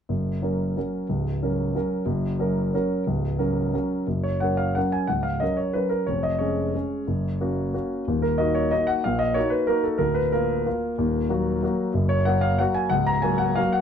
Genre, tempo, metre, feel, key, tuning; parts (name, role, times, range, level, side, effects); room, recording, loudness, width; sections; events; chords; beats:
classical, piano waltz; 164-198 BPM; 3/4; rubato; F# major; A4 = 443 Hz
warm concert grand piano; solo; 0.1-13.8 s; C#1 to Bb5; -22 LUFS; equal
light reverb; dark, warm production; -22 LUFS; side -8 dB against mid
0.1-4.1 A section; 4.1-13.8 B section
0.1 F#; 6.1 C#/E#; 7.1 F#; 8.1 D#m; 10.0 A#/D; 11.0 D#m; 11.9 Gb
| 0.09 0.42 0.76 | 1.09 1.41 1.74 | 2.07 2.39 2.73 | 3.06 3.38 3.73 | 4.08 4.42 4.76 | 5.09 5.42 5.75 | 6.09 6.41 6.74 | 7.07 7.40 7.73 | 8.07 8.38 8.71 | 9.04 9.36 9.69 | 10.01 10.33 10.66 | 10.98 11.29 11.63 | 11.94 12.26 12.60 | 12.92 13.25 13.58